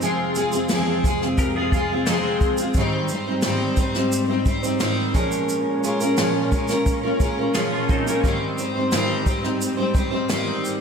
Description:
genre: acoustic pop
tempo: 88 BPM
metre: 4/4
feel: straight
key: Ab major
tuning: A4 = 440 Hz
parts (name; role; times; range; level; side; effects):
- picked steel-string acoustic guitar; accompaniment; 0.0-10.8 s; Ab2 to C5; -21 LUFS; equal; double-tracked left and right, slapback echo
- dark studio string section; sustained chords; 0.0-10.8 s; F2 to Db4; -30 LUFS; right 1 dB; stereo widening
- jazz brush drum kit; drums; 0.0-10.8 s; kick drum, shaker, snare drum; -24 LUFS; equal; none
- twelve-string electric guitar; second line; 1.4-2.7, 7.5-8.4 s; Ab3 to Bb4; -29 LUFS; equal; analog chorus, slapback echo
room: moderate lush hall reverb, RT60 2.2 s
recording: big arena sound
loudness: -19 LUFS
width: side -6 dB against mid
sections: 0.0-10.8 A section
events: none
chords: 0.0 Fm; 2.8 Abmaj7; 5.2 Bbm7; 8.2 Abmaj7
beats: | 0.01 0.70 1.38 2.07 | 2.75 3.44 4.12 4.81 | 5.49 6.18 6.87 7.55 | 8.24 8.93 9.61 10.30

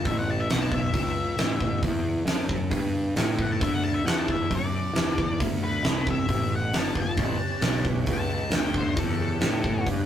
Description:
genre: blues rock power trio and southern rock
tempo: 134 BPM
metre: 4/4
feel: straight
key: A mixolydian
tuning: A4 = 441 Hz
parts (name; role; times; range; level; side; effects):
- octave-fuzz lead guitar; melody; 0.0-9.9 s; A4 to A5; -31 LUFS; left 4 dB; distortion
- fuzz picked electric bass; bass; 0.0-10.1 s; G1 to A2; -27 LUFS; right 1 dB; overdrive
- huge arena drum kit; drums; 0.1-10.0 s; hi-hat, kick drum, snare drum; -26 LUFS; equal; none
- overdriven tonewheel organ; sustained chords; 7.2-10.1 s; C#4 to B4; -37 LUFS; right 4 dB; slow rotary speaker, chorus vibrato
room: moderate small room reverb, RT60 0.6 s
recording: rough rehearsal-room recording, tube saturation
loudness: -23 LUFS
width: side -10 dB against mid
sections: 0.0-10.1 A section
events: lead electric guitar solo 0.0-10.1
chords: 0.1 A7; 3.6 D7; 7.2 A7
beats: | 0.05 0.50 0.94 1.39 | 1.83 2.28 2.72 3.17 | 3.61 4.06 4.51 4.95 | 5.40 5.85 6.29 6.74 | 7.19 7.63 8.08 8.53 | 8.98 9.42 9.87

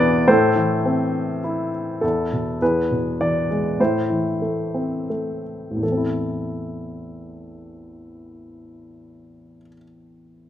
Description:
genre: classical, lyrical solo piano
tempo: 77-109 BPM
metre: 3/4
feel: rubato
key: A minor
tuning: A4 = 440 Hz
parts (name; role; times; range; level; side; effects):
- warm grand piano; solo; 0.0-10.5 s; A1 to D5; -19 LUFS; equal; none
room: moderate recital hall reverb, RT60 1.4 s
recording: none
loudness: -19 LUFS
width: side -11 dB against mid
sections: 0.0-2.0 A section; 2.0-5.8 B section; 5.8-10.3 C section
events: slowing down 2.0-5.8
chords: 0.3 Am; 2.0 Esus4; 2.6 E; 3.8 Am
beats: | 0.28 0.84 1.43 | 2.03 2.61 3.20 | 3.79 4.41 5.09 | 5.83 6.58 7.32 | 8.06 8.80 9.56

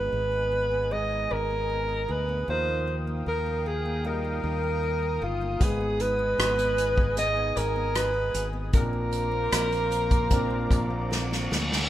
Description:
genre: pop ballad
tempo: 76 BPM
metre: 4/4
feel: straight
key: unclear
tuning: A4 = 440 Hz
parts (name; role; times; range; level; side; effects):
- breathy alto saxophone; melody; 0.0-11.5 s; F4 to Eb5; -27 LUFS; right 1 dB; none
- warm concert grand piano; accompaniment; 0.0-11.9 s; Ab2 to Cb5; -36 LUFS; right 1 dB; none
- warm analog pad; sustained chords; 0.0-11.9 s; Cb4 to Eb6; -39 LUFS; equal; chorus
- nylon-string guitar; arpeggios; 0.0-11.9 s; Ab2 to Ab4; -39 LUFS; equal; ping-pong delay
- fingered electric bass; bass; 0.0-11.9 s; G1 to Eb2; -31 LUFS; equal; none
- unplugged drum kit; drums; 5.6-11.9 s; hi-hat, kick drum, rim click, snare drum; -26 LUFS; equal; none
- reverse cymbal; sound effects; 10.9-11.9 s; none; -32 LUFS; right 1 dB; none
room: light reverb, small room ambience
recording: rough home demo mix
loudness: -24 LUFS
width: side -12 dB against mid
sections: 0.0-11.9 A section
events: reverse cymbal 10.9-11.9; drum fill 11.1-11.9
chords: 0.0 Abm; 2.5 Ebadd9; 5.6 Abm; 8.7 Bbadd9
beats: 0.12 0.91 1.70 | 2.48 3.27 4.05 4.83 | 5.61 6.39 7.17 7.96 | 8.74 9.52 10.31 11.11

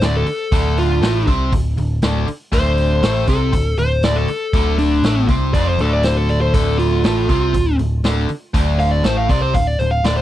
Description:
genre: blues rock power trio and southern rock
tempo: 120 BPM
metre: 4/4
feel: straight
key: D minor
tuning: A4 = 440 Hz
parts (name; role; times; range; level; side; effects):
- dark smooth lead guitar; melody; 0.0-10.2 s; D4 to F5; -20 LUFS; left 1 dB; overdrive
- overdriven semi-hollow guitar; riff; 0.0-10.2 s; D2 to C4; -20 LUFS; equal; none
- overdriven picked electric bass; bass; 0.0-10.2 s; D1 to C2; -18 LUFS; equal; none
- vintage drum kit; drums; 0.0-10.2 s; hi-hat, kick drum, snare drum; -20 LUFS; equal; none
room: little or no reverb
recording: dry, close 1970s-style studio recording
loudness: -14 LUFS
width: side -13 dB against mid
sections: 0.0-10.2 A section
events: none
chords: 0.0 D5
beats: 0.02 | 0.52 1.02 1.52 2.03 | 2.53 3.03 3.53 4.03 | 4.54 5.04 5.54 6.04 | 6.54 7.04 7.54 8.04 | 8.54 9.04 9.55 10.05

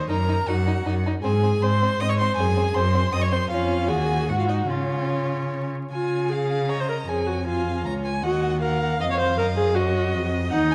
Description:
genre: quick classical-period movement for string quartet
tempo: 158 BPM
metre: 3/4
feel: rubato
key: Db major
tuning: A4 = 440 Hz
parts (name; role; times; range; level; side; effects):
- clear viola; accompaniment; 0.0-10.7 s; Db4 to Eb5; -28 LUFS; equal; none
- rich cello; bass; 0.0-10.7 s; Db2 to Db3; -27 LUFS; equal; none
- clear violin; melody; 0.1-10.7 s; Db5 to Eb6; -33 LUFS; equal; none
- rich violin; second line; 0.1-10.7 s; C4 to Bb5; -32 LUFS; equal; none
room: moderate scoring stage reverb, RT60 1.9 s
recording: vinyl crackle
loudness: -23 LUFS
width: mono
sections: 0.0-5.9 A section; 5.9-10.7 A section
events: none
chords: 0.1 Ebm/Gb; 1.2 Ab; 2.4 Ab7/Gb; 3.5 Db/F; 3.9 Ebm; 4.3 Ab5; 4.7 Db; 8.2 Ebm; 9.4 Ebm/Gb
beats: | 0.10 0.48 0.86 | 1.24 1.61 1.99 | 2.37 2.75 3.13 | 3.51 3.89 4.29 | 4.69 5.11 5.52 | 5.92 6.31 6.70 | 7.09 7.47 7.86 | 8.24 8.62 9.00 | 9.38 9.76 10.14 | 10.52

